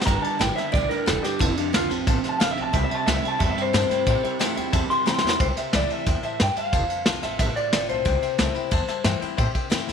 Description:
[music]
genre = rockabilly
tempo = 180 BPM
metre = 4/4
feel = straight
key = C major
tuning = A4 = 440 Hz
[part]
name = picked steel-string acoustic guitar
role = accompaniment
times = 0.0-9.9 s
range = F2 to F4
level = -32 LUFS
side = left 10 dB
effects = none
[part]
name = electric guitar through a small old amp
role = riff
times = 0.0-5.4 s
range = F2 to A3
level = -29 LUFS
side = right 15 dB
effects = none
[part]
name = vintage brush drum kit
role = drums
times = 0.0-9.9 s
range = kick drum, ride cymbal, snare drum, splash cymbal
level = -25 LUFS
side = equal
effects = none
[part]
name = electric guitar through a small old amp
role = melody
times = 0.1-9.2 s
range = D4 to C6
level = -25 LUFS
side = left 1 dB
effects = tape echo
[part]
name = warm upright piano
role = accompaniment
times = 0.1-9.9 s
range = B4 to C6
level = -33 LUFS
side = left 13 dB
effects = none
[part]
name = upright bass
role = bass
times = 0.1-9.9 s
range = E1 to A2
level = -28 LUFS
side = right 1 dB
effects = none
[sound]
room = light reverb, studio reverb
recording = 1960s-style stereo with parts hard left and right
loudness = -20 LUFS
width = side -7 dB against mid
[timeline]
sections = 0.0-5.4 A section; 5.4-9.9 B section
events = clean electric guitar solo 0.0-5.4; drum fill 5.1-5.4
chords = 0.1 G6; 1.4 F6; 2.7 C6; 6.7 F6; 8.1 C6

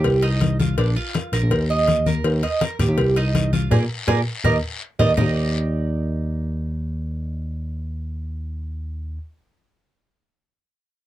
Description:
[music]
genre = latin, Cuban son and guajira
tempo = 163 BPM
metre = 4/4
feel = straight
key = Eb major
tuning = A4 = 440 Hz
[part]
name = Cuban tres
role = arpeggios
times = 0.0-9.2 s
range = D4 to Eb5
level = -23 LUFS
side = right 4 dB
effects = none
[part]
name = barky tine electric piano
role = bass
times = 0.0-9.2 s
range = Bb1 to Bb2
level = -22 LUFS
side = equal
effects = none
[part]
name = cowbell and bongos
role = percussion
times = 0.0-5.3 s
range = none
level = -28 LUFS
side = left 5 dB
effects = none
[part]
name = congas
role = percussion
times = 0.1-5.3 s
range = none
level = -22 LUFS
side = left 1 dB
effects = none
[part]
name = guiro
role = percussion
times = 0.1-5.3 s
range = none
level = -34 LUFS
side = left 5 dB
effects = none
[sound]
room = light reverb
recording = none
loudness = -19 LUFS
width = side -14 dB against mid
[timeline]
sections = 0.0-5.2 A section; 5.2-8.1 B section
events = band accent 3.7-5.2; drum fill 4.1-5.2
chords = 0.1 Cm; 0.8 Bb; 1.5 Eb; 3.0 Cm; 3.7 Bb7; 4.4 Eb5

